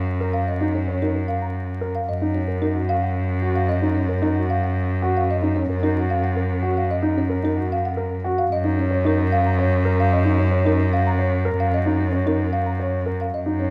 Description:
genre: classical, minimalist pattern music.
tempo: 112 BPM.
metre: 3/4.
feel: straight.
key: F# major.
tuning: A4 = 437 Hz.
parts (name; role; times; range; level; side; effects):
rich cello; bass; 0.0-13.7 s; F#2; -24 LUFS; equal; none.
dark concert grand piano; arpeggios; 0.2-13.7 s; C#4 to C#5; -27 LUFS; equal; none.
folk marimba with soft mallets; melody; 0.3-13.7 s; A#4 to A#5; -30 LUFS; equal; none.
room: little or no reverb.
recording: close, detailed microphones, vinyl crackle.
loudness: -22 LUFS.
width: mono.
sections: 0.0-13.7 A section.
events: none.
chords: 0.0 F#6.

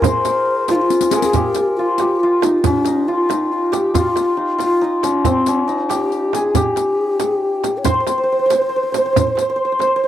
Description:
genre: Persian modal ensemble.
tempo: 92 BPM (dotted quarters).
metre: 6/8.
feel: straight.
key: C dastgah shur.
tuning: A4 = 440 Hz.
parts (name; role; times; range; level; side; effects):
santur; melody; 0.0-10.1 s; C4 to C5; -17 LUFS; equal; none.
breathy mellow long shakuhachi; second line; 0.0-10.1 s; C4 to Db5+43c; -20 LUFS; left 2 dB; slapback echo.
frame drum; percussion; 0.0-9.9 s; none; -23 LUFS; right 10 dB; none.
riq; percussion; 0.0-9.9 s; none; -26 LUFS; left 15 dB; none.
tombak; percussion; 0.0-9.9 s; none; -24 LUFS; right 3 dB; none.
room: light reverb.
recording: dry, close 1970s-style studio recording.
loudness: -15 LUFS.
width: side -12 dB against mid.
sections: 0.0-1.3 A section; 1.3-10.1 B section.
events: drum fill 0.9-1.3.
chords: none.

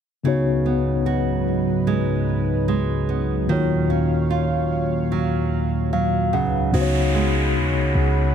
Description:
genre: contemporary R&B.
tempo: 74 BPM.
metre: 4/4.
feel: swing 54% on 16ths.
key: unclear.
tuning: A4 = 439 Hz.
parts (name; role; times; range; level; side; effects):
mellow tine electric piano; accompaniment; 0.2-8.3 s; Db3 to Gb5; -22 LUFS; left 4 dB; medium stereo tremolo.
warm analog pad; sustained chords; 0.2-8.3 s; Db2 to Cb6; -24 LUFS; right 1 dB; chorus.
nylon-string guitar; arpeggios; 0.2-8.3 s; Db3 to Gb4; -25 LUFS; right 8 dB; tape echo.
clean 808-style bass; bass; 6.7-8.3 s; Db2 to Eb2; -22 LUFS; equal; none.
downlifter; sound effects; 6.7-8.3 s; none; -27 LUFS; equal; none.
room: light reverb.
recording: none.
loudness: -18 LUFS.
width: side -8 dB against mid.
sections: 0.2-6.7 A section; 6.7-8.3 B section.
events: tine electric piano fill 5.5-6.7.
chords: 0.2 Db7sus4; 3.5 Ebm9; 6.3 Db7sus4.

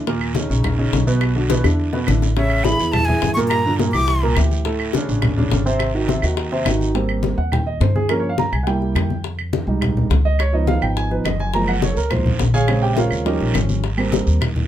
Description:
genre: Afro-Cuban jazz.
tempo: 209 BPM.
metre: 4/4.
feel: straight.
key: Ab major from 6.9 s.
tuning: A4 = 440 Hz.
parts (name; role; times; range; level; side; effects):
warm grand piano; accompaniment; 0.0-14.4 s; A2 to Bb5; -21 LUFS; right 2 dB; none.
upright bass; bass; 0.0-14.7 s; Gb1 to G2; -20 LUFS; equal; none.
bongos; percussion; 0.1-14.6 s; none; -26 LUFS; left 10 dB; none.
congas; percussion; 0.1-14.7 s; none; -24 LUFS; left 2 dB; none.
guiro; percussion; 0.1-7.0, 11.5-14.7 s; none; -33 LUFS; right 6 dB; none.
claves; percussion; 0.2-14.6 s; none; -29 LUFS; right 5 dB; none.
breathy bright jazz flute; melody; 2.4-4.3 s; E5 to D6; -21 LUFS; equal; none.
room: light reverb.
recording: minimal, uncompressed stereo recording.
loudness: -16 LUFS.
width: side -11 dB against mid.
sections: 0.0-6.9 A section; 6.9-14.7 B section.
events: drum fill 1.5-2.4; grand piano solo 6.9-14.7.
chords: 0.1 Eb5; 1.2 Cbm; 1.8 E5; 2.4 Amaj9; 3.5 Gm7; 4.1 C9; 4.7 D5; 5.8 Ab7; 6.9 Abmaj7; 8.1 Gm7b5; 8.7 C7; 9.2 Fm7; 10.4 Db7; 11.5 Gbmaj7; 12.7 Bbm7; 13.3 Eb7; 13.8 Abmaj7.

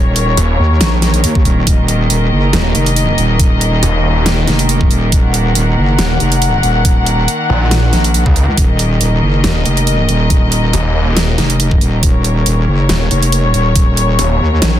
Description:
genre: heavy wobble dubstep.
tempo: 139 BPM.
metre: 4/4.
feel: swing 54% on 16ths, half-time.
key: Eb minor.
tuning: A4 = 439 Hz.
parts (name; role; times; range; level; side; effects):
warm studio string section; sustained chords; 0.0-14.8 s; Eb3 to Gb5; -17 LUFS; left 1 dB; sidechain pumping, low-pass filter.
wobble bass; bass; 0.0-14.8 s; Eb1 to Eb2; -13 LUFS; equal; chorus, overdrive.
dubstep drum kit; drums; 0.2-14.7 s; hi-hat, snare drum; -16 LUFS; right 1 dB; overdrive.
snarling distorted saw bass; bass; 0.4-14.4 s; Eb1 to Db2; -13 LUFS; equal; overdrive.
electronic kick drum; drums; 1.4-13.8 s; none; -12 LUFS; equal; overdrive.
room: digital ambience.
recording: dense, heavily limited modern master.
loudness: -10 LUFS.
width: side -11 dB against mid.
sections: 0.0-14.8 A section.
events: none.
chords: 0.0 Eb5.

